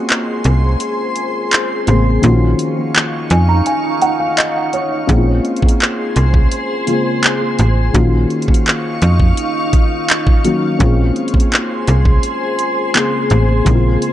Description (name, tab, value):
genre	contemporary R&B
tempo	84 BPM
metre	4/4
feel	straight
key	Bb minor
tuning	A4 = 439 Hz
part	felt-muted upright piano	accompaniment	0.0-14.1 s	Db3 to Bb5	-18 LUFS	left 2 dB	tape echo
part	glassy FM pad	sustained chords	0.0-14.1 s	Eb4 to Db6	-21 LUFS	equal	ensemble chorus, built-in reverb
part	smooth R&B drum kit	drums	0.1-14.1 s	handclaps, hi-hat, kick drum	-14 LUFS	equal	none
part	slap-like FM bass	bass	0.5-14.0 s	A1 to F2	-12 LUFS	equal	none
room	light reverb, digital ambience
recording	echo-heavy mix, nothing above 10.6 kHz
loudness	-12 LUFS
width	side -12 dB against mid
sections	0.0-14.1 A section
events	break 0.0-5.1; felt piano fill 2.9-5.1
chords	0.0 Bbm9; 2.2 Ebm9/Bb; 5.1 Bbm9; 7.9 Ebm9/Bb; 10.8 Bbm9